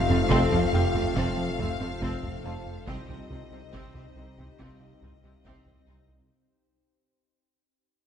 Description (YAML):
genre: cinematic, hybrid orchestral and electronic film score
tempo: 70 BPM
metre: 4/4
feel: straight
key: C dorian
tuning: A4 = 440 Hz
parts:
  - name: rich symphonic violin section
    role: melody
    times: 0.0-6.1 s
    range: Eb5 to F5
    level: -35 LUFS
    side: left 6 dB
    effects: none
  - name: dark French horn section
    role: sustained chords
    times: 0.0-6.0 s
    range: G3 to F4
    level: -34 LUFS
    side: left 3 dB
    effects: none
  - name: glassy FM pad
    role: sustained chords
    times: 0.0-6.3 s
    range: C4 to C5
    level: -35 LUFS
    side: left 1 dB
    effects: ensemble chorus, built-in reverb
  - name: dark detuned saw bass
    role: bass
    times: 0.0-6.3 s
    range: F1 to C2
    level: -36 LUFS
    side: equal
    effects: none
  - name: bright grand piano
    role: texture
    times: 0.0-6.3 s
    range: F4 to A5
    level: -38 LUFS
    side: left 1 dB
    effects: tape echo
  - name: rich symphonic violin section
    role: second line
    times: 0.1-5.9 s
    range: Eb4 to A4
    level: -38 LUFS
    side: left 2 dB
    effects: none
  - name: clear symphonic viola section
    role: accompaniment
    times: 0.1-6.0 s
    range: C4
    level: -35 LUFS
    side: equal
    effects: none
  - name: round analog bass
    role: riff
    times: 0.1-6.2 s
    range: C2 to F3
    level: -32 LUFS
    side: right 1 dB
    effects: none
  - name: rich symphonic cello section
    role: bass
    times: 0.1-6.0 s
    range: F2 to C3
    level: -32 LUFS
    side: right 2 dB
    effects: none
  - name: rich symphonic double bass section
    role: bass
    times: 0.3-6.0 s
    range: F1 to C2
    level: -31 LUFS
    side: right 2 dB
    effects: none
  - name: taiko ensemble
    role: drums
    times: 0.3-6.3 s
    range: none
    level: -36 LUFS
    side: equal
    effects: none
room: wet scoring stage reverb, RT60 1.7 s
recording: nothing above 10.7 kHz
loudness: -24 LUFS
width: side -8 dB against mid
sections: 0.0-6.3 A section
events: fade-out 0.0-6.3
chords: 0.0 F; 2.9 Cm